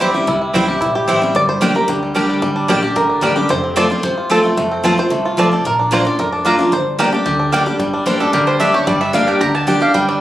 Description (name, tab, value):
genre	bluegrass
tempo	223 BPM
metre	4/4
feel	straight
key	G dorian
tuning	A4 = 438 Hz
part	bluegrass banjo	melody	0.0-10.2 s	G3 to D5	-17 LUFS	equal	plate reverb
part	picked steel-string acoustic guitar	accompaniment	0.0-10.2 s	F2 to G4	-17 LUFS	left 1 dB	none
part	mandolin	stabs	0.0-10.2 s	Bb3 to Bb5	-18 LUFS	right 2 dB	none
part	upright bass	bass	0.0-10.1 s	F1 to G2	-26 LUFS	equal	none
room	moderate studio reverb, RT60 0.7 s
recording	recorded on a phone in the room, club reverb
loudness	-13 LUFS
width	side -14 dB against mid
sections	0.0-7.8 A section; 7.8-10.2 A section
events	five-string banjo solo 0.0-7.8; mandolin solo 7.8-10.2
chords	0.0 C; 1.4 Gm; 3.5 F; 5.7 Bb; 6.7 Gm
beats	0.01 | 0.28 0.54 0.81 1.08 | 1.35 1.62 1.89 2.16 | 2.42 2.69 2.96 3.23 | 3.50 3.77 4.04 4.31 | 4.58 4.84 5.11 5.38 | 5.65 5.92 6.19 6.46 | 6.72 6.99 7.26 7.53 | 7.80 8.07 8.34 8.60 | 8.87 9.14 9.41 9.68 | 9.95